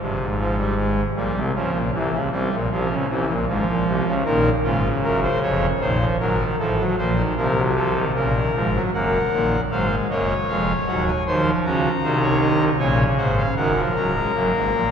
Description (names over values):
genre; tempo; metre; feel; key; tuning
classical, baroque-style 4-part fugue for pipe organ; 77 BPM; 3/4; straight; Bb minor; A4 = 436 Hz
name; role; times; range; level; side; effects
pipe organ, trumpet; solo; 0.0-14.9 s; Db1 to C6; -18 LUFS; equal; none
room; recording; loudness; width
wet cathedral reverb, RT60 4.2 s; heard from further back in the room; -18 LUFS; side -7 dB against mid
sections
0.0-8.9 A section; 8.9-14.9 B section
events
none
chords
0.0 Fm; 1.2 Gm7b5/Bb; 1.9 C; 3.5 Fm/Ab; 4.3 Bbm; 5.8 Cm7b5/Bb; 6.6 F/A; 8.1 Bbm; 8.9 Ebm/Gb; 10.5 Db/F; 11.3 Cdim; 12.8 Bbm; 13.6 Gb